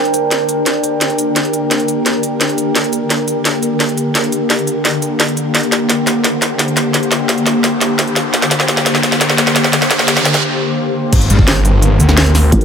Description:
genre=dark technical drum and bass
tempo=172 BPM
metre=4/4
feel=straight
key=G minor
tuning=A4 = 444 Hz
part: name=swarming drone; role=sustained chords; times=0.0-12.6 s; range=D3 to C5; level=-17 LUFS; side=left 2 dB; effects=built-in reverb, sidechain pumping
part: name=deep dark ambient pad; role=texture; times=0.0-12.6 s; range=D4 to G5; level=-20 LUFS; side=right 1 dB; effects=chorus, built-in reverb, sidechain pumping
part: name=drum and bass drum kit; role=drums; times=0.1-12.6 s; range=crash cymbal, hi-hat, shaker, snare drum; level=-15 LUFS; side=equal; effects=high-pass filter on hats, high-pass filter on snare, high-pass filter on perc, high-pass filter on cymbals, high-pass filter on room
part: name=riser and impact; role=sound effects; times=6.9-12.5 s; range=none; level=-20 LUFS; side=right 1 dB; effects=none
part: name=snarling distorted saw bass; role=bass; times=11.1-12.5 s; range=G1 to G2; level=-11 LUFS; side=equal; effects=distortion, sidechain pumping
part: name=electronic kick drum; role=drums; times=11.1-12.6 s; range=none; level=-12 LUFS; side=equal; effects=overdrive
part: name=vowel-sweep wobble bass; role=bass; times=12.5-12.6 s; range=A1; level=-12 LUFS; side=equal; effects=chorus
room=moderate lush hall reverb, RT60 1.9 s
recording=none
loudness=-11 LUFS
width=side -7 dB against mid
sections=0.0-11.1 A section; 11.1-12.6 B section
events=build-up 0.0-11.1; drum fill 0.0-10.4; riser 6.9-10.4; break 10.4-11.1; drop 11.1-12.6; impact 11.1-12.5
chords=0.0 Gm

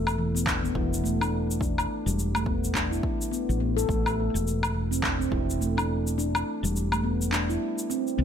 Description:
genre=organic downtempo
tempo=105 BPM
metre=4/4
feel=swing 59% on 16ths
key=A minor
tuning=A4 = 443 Hz
part: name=woody fretless electric bass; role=bass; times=0.0-8.2 s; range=E1 to C2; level=-28 LUFS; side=equal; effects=ensemble chorus
part: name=electronic woodblock, cabasa and handclaps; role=drums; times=0.1-8.2 s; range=none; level=-30 LUFS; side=left 1 dB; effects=none
part: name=handpan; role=arpeggios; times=0.2-8.2 s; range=E3 to A4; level=-28 LUFS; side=equal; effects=ping-pong delay
part: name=electronic kick drum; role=drums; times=0.5-5.5 s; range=none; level=-31 LUFS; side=equal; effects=overdrive
room=light reverb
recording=none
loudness=-24 LUFS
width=side -8 dB against mid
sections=0.0-8.2 A section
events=kick drops out 6.2-8.2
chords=0.0 G6 (rootless); 3.9 A5

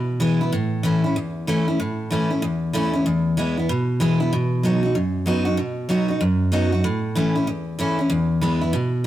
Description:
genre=rock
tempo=190 BPM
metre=4/4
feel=swing 63% on 8ths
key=E major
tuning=A4 = 440 Hz
part: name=picked steel-string acoustic guitar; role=solo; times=0.0-9.1 s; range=E2 to F#4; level=-19 LUFS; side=equal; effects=none
room=moderate stone room reverb, RT60 1.2 s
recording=rough rehearsal-room recording, warm saturation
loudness=-19 LUFS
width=side -13 dB against mid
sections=0.0-9.1 A section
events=none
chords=0.0 E; 0.5 A; 3.1 E; 4.3 B; 6.8 A; 8.1 E

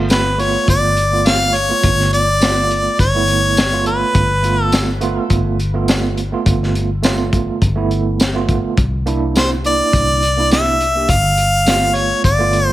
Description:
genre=straight-eighth soul blues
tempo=104 BPM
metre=4/4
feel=swing 54% on 16ths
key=G mixolydian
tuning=A4 = 440 Hz
part: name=overdriven tine electric piano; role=accompaniment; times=0.0-12.7 s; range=A3 to G4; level=-21 LUFS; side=right 6 dB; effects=fast tremolo
part: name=vintage muted fingered electric bass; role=bass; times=0.0-12.7 s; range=G1 to C2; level=-19 LUFS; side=equal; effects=none
part: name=warm harmonica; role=melody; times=0.1-5.0, 9.4-12.7 s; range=B4 to F5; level=-16 LUFS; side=left 1 dB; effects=none
part: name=crunchy breakbeat drum kit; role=drums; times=0.1-12.7 s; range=hi-hat, kick drum, snare drum, tambourine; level=-18 LUFS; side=left 1 dB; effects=none
room=light reverb, studio ambience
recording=none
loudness=-13 LUFS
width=side -14 dB against mid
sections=0.0-12.7 A section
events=none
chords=0.0 G7; 8.8 C7; 11.1 G7

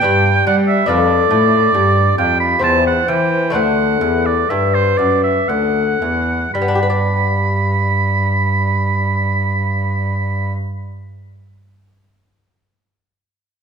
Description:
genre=classical, baroque-style sonata movement with continuo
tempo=56-71 BPM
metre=3/4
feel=straight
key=G major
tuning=A4 = 441 Hz
part: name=bright oboe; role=second line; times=0.0-10.5 s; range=C5 to B5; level=-17 LUFS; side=right 5 dB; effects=none
part: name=lute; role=accompaniment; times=0.0-11.4 s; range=D2 to D5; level=-21 LUFS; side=left 2 dB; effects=none
part: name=rich cello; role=bass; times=0.0-10.5 s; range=D2 to G3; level=-18 LUFS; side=equal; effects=none
part: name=mellow hollow baroque flute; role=melody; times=0.1-10.5 s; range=G4 to D5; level=-21 LUFS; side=left 8 dB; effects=none
room=moderate recital hall reverb, RT60 1.6 s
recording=none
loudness=-13 LUFS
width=side -6 dB against mid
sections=0.0-6.6 A section; 6.6-9.8 B section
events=slowing down 0.0-6.6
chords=0.0 G; 0.9 G7/F; 2.6 C/E; 3.5 D7; 6.6 G

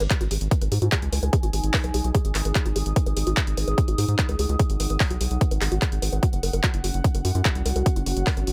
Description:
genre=psychedelic trance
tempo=147 BPM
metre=4/4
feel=straight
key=G# minor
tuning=A4 = 440 Hz
part: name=woody wave-folded pluck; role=riff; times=0.0-8.5 s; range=E#4 to B4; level=-34 LUFS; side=equal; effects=chorus, cassette tape, sidechain pumping, tape echo
part: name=round analog bass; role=bass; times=0.0-8.5 s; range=F#1 to G#2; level=-27 LUFS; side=equal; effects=tube saturation
part: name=techno drum kit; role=drums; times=0.0-8.5 s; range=handclaps, hi-hat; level=-31 LUFS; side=equal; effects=none
part: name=warbly tape-like pad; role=texture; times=0.9-8.5 s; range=C#4 to D#6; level=-35 LUFS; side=equal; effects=chorus, built-in reverb, phaser, sidechain pumping
part: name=electronic kick drum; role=drums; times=0.1-8.3 s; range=none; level=-25 LUFS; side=equal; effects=overdrive
room=digital ambience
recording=none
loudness=-23 LUFS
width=mono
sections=0.0-8.5 A section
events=filter sweep on synth arpeggio sound 0.0-8.5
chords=0.0 G#5; 6.2 F#5

